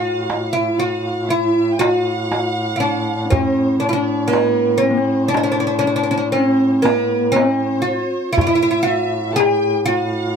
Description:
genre	Arabic maqam ensemble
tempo	119 BPM (eighths)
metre	10/8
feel	straight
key	A maqam huzam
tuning	A4 = 439 Hz
part	oud	melody	0.0-10.4 s	Bb3+50c to G#4-50c	-17 LUFS	right 1 dB	none
part	hollow-body jazz guitar	second line	0.0-10.4 s	Bb3+50c to A4	-24 LUFS	left 5 dB	none
part	warm studio violin section	second line	0.0-10.4 s	Bb4+50c to A5	-27 LUFS	right 1 dB	none
part	mellow duduk	drone	0.0-10.4 s	A2	-24 LUFS	equal	none
part	darbuka	percussion	0.3-9.6 s	none	-21 LUFS	right 1 dB	none
room	light reverb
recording	dark, warm production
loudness	-15 LUFS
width	side -6 dB against mid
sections	0.0-10.4 A section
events	none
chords	none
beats	0.29 0.80 1.30 1.80 2.31 2.81 | 3.32 3.83 4.33 4.83 5.34 5.85 6.35 6.86 7.36 7.87 | 8.37 8.88 9.38 9.89

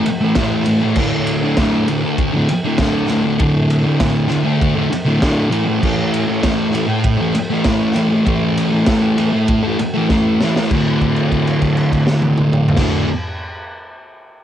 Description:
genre	garage rock duo or trio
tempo	99 BPM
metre	4/4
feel	straight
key	unclear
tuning	A4 = 440 Hz
part	thick fuzz guitar	riff	0.0-13.1 s	D2 to A3	-15 LUFS	equal	distortion
part	raw garage drum kit	drums	0.1-12.9 s	crash cymbal, kick drum, ride cymbal, snare drum, toms	-20 LUFS	equal	cassette tape
room	small room ambience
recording	home recording on cassette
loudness	-14 LUFS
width	side -10 dB against mid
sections	0.0-10.7 A section; 10.7-13.1 B section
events	drum fill 10.1-10.7; held note 10.7-12.8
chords	0.0 A5; 1.0 D5; 5.5 A5; 10.7 D5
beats	0.37 | 0.97 1.58 2.19 2.80 | 3.40 4.01 4.62 5.23 | 5.84 6.44 7.05 7.66 | 8.27 8.88 9.49 10.10 | 10.71 11.31 11.92 12.53

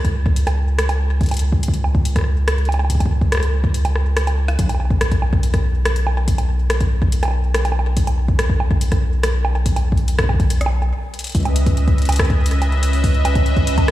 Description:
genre	IDM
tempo	142 BPM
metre	4/4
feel	straight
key	C# minor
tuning	A4 = 439 Hz
part	rubbery square bass	bass	0.0-13.9 s	B1 to C#2	-17 LUFS	equal	none
part	electro analog drum machine	drums	0.0-13.9 s	bongos, hi-hat, rim click	-24 LUFS	right 1 dB	studio reverb, digital delay
part	electronic kick drum	drums	0.0-13.9 s	none	-18 LUFS	equal	studio reverb
part	phased analog pad	sustained chords	11.4-13.9 s	C#4 to E5	-22 LUFS	equal	phaser, chorus, shimmer reverb
room	little or no reverb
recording	played on a big sound system in a bare room, large studio reverb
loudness	-15 LUFS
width	side -15 dB against mid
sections	0.0-11.3 A section; 11.3-13.9 B section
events	stop 10.9-11.3; drum fill 11.1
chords	0.0 N.C.; 11.3 C#m9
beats	0.36 0.78 | 1.21 1.63 2.05 2.47 | 2.90 3.32 3.74 4.17 | 4.59 5.01 5.43 5.86 | 6.28 6.70 7.12 7.54 | 7.97 8.39 8.81 9.23 | 9.66 10.08 10.50 10.93 | 11.35 11.77 12.19 12.62 | 13.04 13.46 13.88

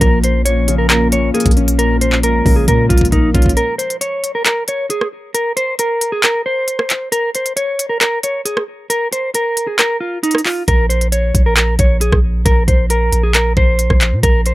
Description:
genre	hip hop, trap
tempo	135 BPM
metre	4/4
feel	half-time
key	Bb minor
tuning	A4 = 440 Hz
part	mellow electric guitar	melody	0.0-14.5 s	Eb4 to Db5	-17 LUFS	equal	ping-pong delay
part	dark baby grand piano	accompaniment	0.0-3.6 s	Bb2 to Db4	-19 LUFS	left 3 dB	none
part	dark analog pad	sustained chords	0.0-3.5 s	F3 to Db4	-23 LUFS	equal	chorus
part	long sustained 808-style bass	bass	0.0-3.6, 10.7-14.5 s	Bb1 to Bb2	-15 LUFS	equal	none
part	trap drum kit	drums	0.0-14.5 s	handclaps, hi-hat, kick drum, rim click	-14 LUFS	equal	overdrive
room	little or no reverb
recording	none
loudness	-12 LUFS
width	side -17 dB against mid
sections	0.0-3.6 A section; 3.6-14.5 B section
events	drum fill 2.7-3.6; break 3.6-10.7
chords	0.0 Bbm; 3.6 N.C.; 10.7 Bbsus2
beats	| 0.01 0.46 0.90 1.35 | 1.79 2.23 2.68 3.12 | 3.57 4.01 4.46 4.90 | 5.35 5.79 6.24 6.68 | 7.12 7.57 8.01 8.46 | 8.90 9.35 9.79 10.23 | 10.68 11.12 11.57 12.01 | 12.46 12.90 13.35 13.79 | 14.23

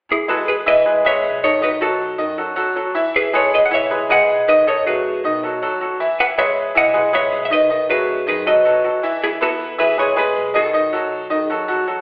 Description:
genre	latin, salsa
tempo	158 BPM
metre	4/4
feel	straight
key	E major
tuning	A4 = 440 Hz
part	vintage hollow-body jazz guitar	melody	0.1-11.8 s	E4 to F#5	-16 LUFS	equal	none
part	upright bass	bass	0.1-12.0 s	B1 to B2	-43 LUFS	equal	none
part	bright concert grand piano	accompaniment	0.3-12.0 s	D#3 to E5	-19 LUFS	equal	none
room	wet recital hall reverb, RT60 1.5 s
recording	recorded in a church or concert hall, telephone sound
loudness	-14 LUFS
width	side -28 dB against mid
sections	0.1-12.0 A section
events	none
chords	0.1 E; 1.6 B7; 3.1 E; 4.7 B7; 6.2 E; 7.7 B7; 9.2 E; 10.7 B7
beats	| 0.10 0.48 0.86 1.24 | 1.62 2.00 2.38 2.76 | 3.14 3.52 3.90 4.28 | 4.66 5.04 5.42 5.80 | 6.18 6.56 6.94 7.32 | 7.70 8.08 8.46 8.84 | 9.22 9.60 9.98 10.36 | 10.74 11.12 11.50 11.87

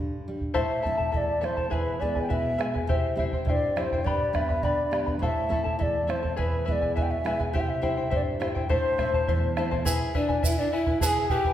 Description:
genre	andean folk, Andean ensemble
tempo	103 BPM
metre	2/4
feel	straight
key	unclear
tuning	A4 = 440 Hz
part	nylon-string guitar	accompaniment	0.0-9.8 s	E2 to E4	-32 LUFS	right 1 dB	none
part	bombo	percussion	0.4-11.5 s	none	-29 LUFS	right 1 dB	none
part	mellow large quena	melody	0.5-11.5 s	B4 to A5	-28 LUFS	equal	none
part	charango	accompaniment	0.5-11.5 s	E4 to B5	-31 LUFS	left 3 dB	none
part	tube shaker	percussion	9.9-11.2 s	none	-33 LUFS	right 6 dB	none
part	breathy bright pan flute	second line	10.2-11.5 s	D4 to G#4	-28 LUFS	left 3 dB	none
room	wet recital hall reverb, RT60 1.4 s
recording	recorded in a church or concert hall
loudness	-24 LUFS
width	side -11 dB against mid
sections	0.5-9.9 A section; 9.9-11.5 B section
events	none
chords	0.0 G5; 0.5 Am; 1.7 E; 2.9 C; 4.0 G; 5.2 Am; 6.4 E; 7.5 C; 8.7 Am; 9.9 E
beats	| 0.55 1.13 | 1.72 2.30 | 2.88 3.47 | 4.05 4.63 | 5.21 5.80 | 6.38 6.96 | 7.54 8.12 | 8.70 9.28 | 9.86 10.44 | 11.02

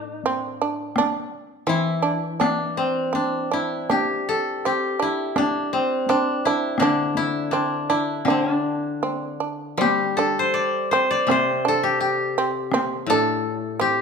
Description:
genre	japanese traditional, Japanese chamber music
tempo	82 BPM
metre	2/4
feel	rubato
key	D suspended pentatonic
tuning	A4 = 440 Hz
part	koto	melody	0.0-14.0 s	C4 to D5	-22 LUFS	left 2 dB	none
part	shamisen	second line	0.0-14.0 s	C4 to D4	-25 LUFS	right 5 dB	none
part	koto	accompaniment	0.0-3.9, 6.8-14.0 s	A2 to G3	-28 LUFS	left 6 dB	none
part	taiko ensemble	percussion	0.2-12.9 s	none	-28 LUFS	left 1 dB	none
room	moderate recital hall reverb, RT60 1.3 s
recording	minimal, uncompressed stereo recording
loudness	-20 LUFS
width	side -5 dB against mid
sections	0.0-9.8 A section; 9.8-14.0 B section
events	none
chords	none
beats	0.23 | 0.95 1.67 | 2.40 3.14 | 3.90 4.65 | 5.37 6.08 | 6.81 7.53 | 8.27 9.04 | 9.80 10.55 | 11.28 12.01 | 12.72 13.43

